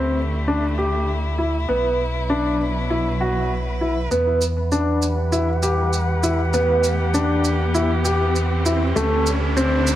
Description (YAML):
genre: piano and strings electronica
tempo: 99 BPM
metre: 4/4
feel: straight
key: E minor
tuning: A4 = 441 Hz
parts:
  - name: dark string quartet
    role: sustained chords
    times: 0.0-10.0 s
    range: B2 to F#5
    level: -25 LUFS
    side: equal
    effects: low-pass filter
  - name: warm upright piano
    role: riff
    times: 0.0-9.9 s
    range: A3 to G4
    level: -21 LUFS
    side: equal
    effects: digital delay
  - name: warm sub bass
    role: bass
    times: 0.0-10.0 s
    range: B1 to E2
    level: -23 LUFS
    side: equal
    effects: tube saturation
  - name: shaker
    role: drums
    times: 4.1-10.0 s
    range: none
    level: -29 LUFS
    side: right 4 dB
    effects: none
  - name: riser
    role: sound effects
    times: 5.8-10.0 s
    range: none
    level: -29 LUFS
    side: right 2 dB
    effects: none
room: light reverb, small room ambience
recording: none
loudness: -18 LUFS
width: side -12 dB against mid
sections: 0.0-4.1 A section; 4.1-10.0 B section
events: build-up 4.1-10.0; filter sweep on string quartet 4.1-10.0; riser 5.8-10.0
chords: 0.0 Dsus4; 1.7 Bsus4; 4.1 Em7; 9.0 Dsus4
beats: 0.48 1.08 | 1.69 2.29 2.90 3.51 | 4.11 4.72 5.33 5.93 | 6.54 7.14 7.75 8.36 | 8.96 9.57